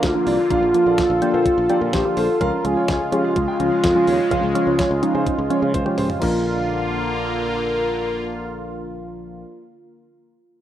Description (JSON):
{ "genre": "synth-pop", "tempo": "126 BPM", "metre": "4/4", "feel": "straight", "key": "Bb major", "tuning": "A4 = 440 Hz", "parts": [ { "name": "mellow horn-like synth lead", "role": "melody", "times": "0.0-9.4 s", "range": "F4 to Bb4", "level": "-21 LUFS", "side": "equal", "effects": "chorus, tremolo, tape echo, plate reverb" }, { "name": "soft electric-piano-like synth keys", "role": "accompaniment", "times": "0.0-9.5 s", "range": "F3 to G4", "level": "-24 LUFS", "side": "equal", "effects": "chorus, phaser, plate reverb" }, { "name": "sweeping resonant pad", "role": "sustained chords", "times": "0.0-9.4 s", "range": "Db3 to A4", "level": "-25 LUFS", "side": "right 1 dB", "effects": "chorus, plate reverb" }, { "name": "sustaining fretless electric bass", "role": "bass", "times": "0.0-9.4 s", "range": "Bb1 to Db3", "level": "-26 LUFS", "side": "equal", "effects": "none" }, { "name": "clean 12-bit digital drum machine", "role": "drums", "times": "0.0-6.3 s", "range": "crash cymbal, hi-hat, kick drum, snare drum, toms", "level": "-26 LUFS", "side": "left 1 dB", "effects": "none" }, { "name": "warm grand piano", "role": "second line", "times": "0.3-7.6 s", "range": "Bb4 to G5", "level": "-30 LUFS", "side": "equal", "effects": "tape echo, plate reverb" } ], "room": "wet studio reverb, RT60 0.6 s", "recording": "rough home demo mix", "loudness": "-17 LUFS", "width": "side -11 dB against mid", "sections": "0.0-6.2 A section; 6.2-10.0 B section", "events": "drum fill 5.7-6.2", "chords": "0.0 Bb; 2.4 Db; 6.2 Bb" }